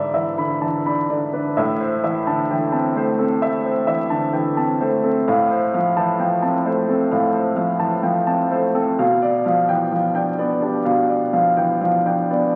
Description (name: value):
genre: classical, romantic nocturne for solo piano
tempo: 64 BPM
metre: 4/4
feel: rubato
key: unclear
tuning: A4 = 440 Hz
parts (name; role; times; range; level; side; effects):
- warm upright piano; solo; 0.0-12.6 s; G#2 to B5; -20 LUFS; equal; none
room: wet recital hall reverb, RT60 1.4 s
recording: very old 78 rpm record, vinyl crackle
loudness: -20 LUFS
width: mono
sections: 0.0-12.6 A section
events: none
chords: 0.0 E7/G#; 1.6 Am; 5.3 F/A; 9.0 G7/B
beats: 0.61 | 1.57 2.49 3.40 4.32 | 5.27 6.19 7.11 8.04 | 8.99 9.92 10.85 11.81